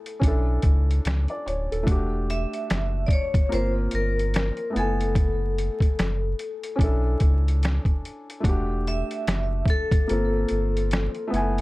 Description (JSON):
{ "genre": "lo-fi hip hop", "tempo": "73 BPM", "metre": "4/4", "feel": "swing 60% on 16ths", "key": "E dorian", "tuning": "A4 = 438 Hz", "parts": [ { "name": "vibraphone with medium hard mallets", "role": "melody", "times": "0.0-11.6 s", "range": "A4 to E5", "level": "-30 LUFS", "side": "left 2 dB", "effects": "tape echo" }, { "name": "felt-muted upright piano", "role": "accompaniment", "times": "0.0-11.6 s", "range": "A3 to G#5", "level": "-29 LUFS", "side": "equal", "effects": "none" }, { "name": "trip hop sampler-style drum kit", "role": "drums", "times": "0.1-11.6 s", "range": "finger snaps, hi-hat, kick drum, snare drum", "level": "-23 LUFS", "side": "equal", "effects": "none" }, { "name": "sub bass with octave", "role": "bass", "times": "0.2-11.6 s", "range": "D1 to C#2", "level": "-24 LUFS", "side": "equal", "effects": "none" } ], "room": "little or no reverb", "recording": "dry, gritty hardware recording, vinyl crackle", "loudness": "-21 LUFS", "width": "side -20 dB against mid", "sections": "0.0-11.6 A section", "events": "none", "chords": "0.2 Bm11; 1.9 Em11; 3.5 Gm7; 4.7 F#m11; 6.8 Bm11; 8.4 Em11; 10.1 Gm11" }